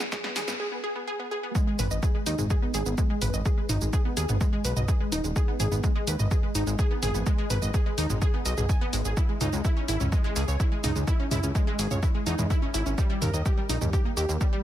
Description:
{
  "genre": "melodic techno",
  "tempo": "126 BPM",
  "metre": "4/4",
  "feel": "straight",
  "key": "G# harmonic minor",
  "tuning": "A4 = 440 Hz",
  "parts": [
    { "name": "wide unison pluck", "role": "arpeggios", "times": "0.0-14.6 s", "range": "G3 to G#5", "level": "-30 LUFS", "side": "equal", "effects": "sidechain pumping, ping-pong delay" },
    { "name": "fat analog bass", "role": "bass", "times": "0.0-14.4 s", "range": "D#1 to E2", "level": "-28 LUFS", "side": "equal", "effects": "sidechain pumping" },
    { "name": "punchy analog drum machine", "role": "drums", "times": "0.0-14.5 s", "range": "hi-hat, shaker, snare drum, toms", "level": "-32 LUFS", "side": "equal", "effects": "none" },
    { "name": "electronic kick drum", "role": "drums", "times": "0.1-14.5 s", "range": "none", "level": "-25 LUFS", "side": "equal", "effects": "none" }
  ],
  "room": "digital ambience",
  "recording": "high-pass filter",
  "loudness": "-24 LUFS",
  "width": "side -12 dB against mid",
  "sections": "0.0-1.6 A section; 1.6-14.6 B section",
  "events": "build-up 0.0-1.6; drum fill 0.0-0.6; filter sweep 0.0-1.6; break 0.6-1.6; drop 1.6-14.6",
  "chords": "0.0 G#m; 9.2 C#m; 13.0 D#"
}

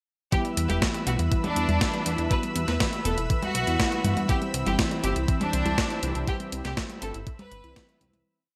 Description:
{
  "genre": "italo disco",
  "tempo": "121 BPM",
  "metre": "4/4",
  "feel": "straight",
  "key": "E minor",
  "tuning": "A4 = 439 Hz",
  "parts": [
    { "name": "bright symphonic violin section", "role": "melody", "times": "0.3-8.2 s", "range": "D4 to B4", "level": "-34 LUFS", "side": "equal", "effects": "digital delay" },
    { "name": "lush unison pad", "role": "sustained chords", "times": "0.3-8.2 s", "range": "C4 to E6", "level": "-36 LUFS", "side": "equal", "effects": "chorus" },
    { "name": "analog pluck", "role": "arpeggios", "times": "0.3-8.2 s", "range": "E3 to E4", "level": "-40 LUFS", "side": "equal", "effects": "none" },
    { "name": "mellow synth brass", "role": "stabs", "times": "0.3-8.2 s", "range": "E3 to G4", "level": "-36 LUFS", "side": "equal", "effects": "chorus" },
    { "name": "clean 12-bit digital drum machine", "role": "drums", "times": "0.3-8.2 s", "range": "congas, hi-hat, snare drum", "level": "-32 LUFS", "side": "equal", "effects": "overdrive, studio reverb, gated reverb" },
    { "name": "electronic kick drum", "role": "drums", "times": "0.3-7.9 s", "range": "none", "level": "-30 LUFS", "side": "equal", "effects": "overdrive, studio reverb" },
    { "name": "chorused synth bass", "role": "bass", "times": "0.6-8.2 s", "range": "E1 to G2", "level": "-30 LUFS", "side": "equal", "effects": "none" }
  ],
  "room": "moderate plate reverb, RT60 1.6 s",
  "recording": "bright 1980s-style digital production",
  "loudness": "-26 LUFS",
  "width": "mono",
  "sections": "0.3-8.3 verse",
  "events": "fade-out 5.6-8.3",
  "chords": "0.3 Em; 4.3 C"
}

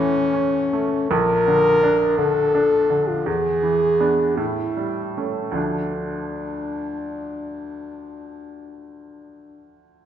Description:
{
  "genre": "classical, romantic duo for French horn and grand piano",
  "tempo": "49-57 BPM (dotted quarters)",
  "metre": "12/8",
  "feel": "rubato",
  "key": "D minor",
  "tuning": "A4 = 441 Hz",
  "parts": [
    { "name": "mellow French horn", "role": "melody", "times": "0.0-9.8 s", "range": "C#4 to Bb4", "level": "-21 LUFS", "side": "left 1 dB", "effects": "none" },
    { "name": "bright baby grand piano", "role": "accompaniment", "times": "0.0-10.1 s", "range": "Bb1 to D4", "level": "-24 LUFS", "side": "right 3 dB", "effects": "none" }
  ],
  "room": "wet recital hall reverb, RT60 1.7 s",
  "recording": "nothing above 7.8 kHz",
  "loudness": "-18 LUFS",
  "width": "side -10 dB against mid",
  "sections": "0.0-10.1 A section",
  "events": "none",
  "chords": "0.0 A; 1.1 Bb; 3.3 E7; 4.4 A7; 5.6 Dm"
}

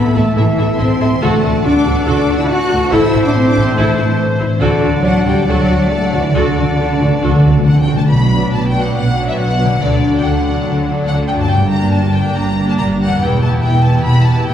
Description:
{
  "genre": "cinematic",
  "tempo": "141 BPM",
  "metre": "4/4",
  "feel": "straight",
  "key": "D mixolydian, B minor from 8.1 s",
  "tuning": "A4 = 435 Hz",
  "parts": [
    { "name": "rich symphonic violin section", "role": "melody", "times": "0.0-14.5 s", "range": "C5 to B5", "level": "-22 LUFS", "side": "left 2 dB", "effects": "none" },
    { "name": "silver concert flute", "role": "second line", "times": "0.0-7.8 s", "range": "A5", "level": "-29 LUFS", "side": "equal", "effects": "none" },
    { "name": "warm clarinet", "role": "second line", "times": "0.0-7.9 s", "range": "A4 to D5", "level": "-23 LUFS", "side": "left 1 dB", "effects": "none" },
    { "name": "warm oboe", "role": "second line", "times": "0.0-7.8 s", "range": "E5 to F#5", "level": "-26 LUFS", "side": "right 2 dB", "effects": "none" },
    { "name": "warm symphonic violin section", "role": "second line", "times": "0.0-14.5 s", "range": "G4 to F#6", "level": "-26 LUFS", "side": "left 2 dB", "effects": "none" },
    { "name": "rich symphonic viola section", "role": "accompaniment", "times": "0.0-14.5 s", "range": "F#3 to A4", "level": "-22 LUFS", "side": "right 1 dB", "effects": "none" },
    { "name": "mellow French horn section", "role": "sustained chords", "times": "0.0-7.8 s", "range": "D3 to F#4", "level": "-20 LUFS", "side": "left 3 dB", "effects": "none" },
    { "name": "concert harp", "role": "arpeggios", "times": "0.0-14.5 s", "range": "E2 to B4", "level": "-21 LUFS", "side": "left 4 dB", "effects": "none" },
    { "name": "rich studio double bass section", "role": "bass", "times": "0.0-14.5 s", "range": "E1 to D2", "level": "-17 LUFS", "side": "right 1 dB", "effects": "none" },
    { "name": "rich symphonic cello section", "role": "bass", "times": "0.0-14.5 s", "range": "E2 to F#4", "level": "-18 LUFS", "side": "right 1 dB", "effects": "none" },
    { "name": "timpani", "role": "percussion", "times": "0.0-0.1, 4.6-8.0 s", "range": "A2 to D3", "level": "-16 LUFS", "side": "equal", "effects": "none" }
  ],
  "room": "wet scoring stage reverb, RT60 2.0 s",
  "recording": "heard from further back in the room",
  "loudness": "-11 LUFS",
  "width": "side -9 dB against mid",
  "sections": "0.0-8.1 A section; 8.1-14.5 B section",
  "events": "timpani fill 4.6-8.1",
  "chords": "0.0 Am; 1.2 D; 2.9 Am; 4.6 D; 8.1 Bm; 9.8 D; 11.5 Gm; 13.2 Em"
}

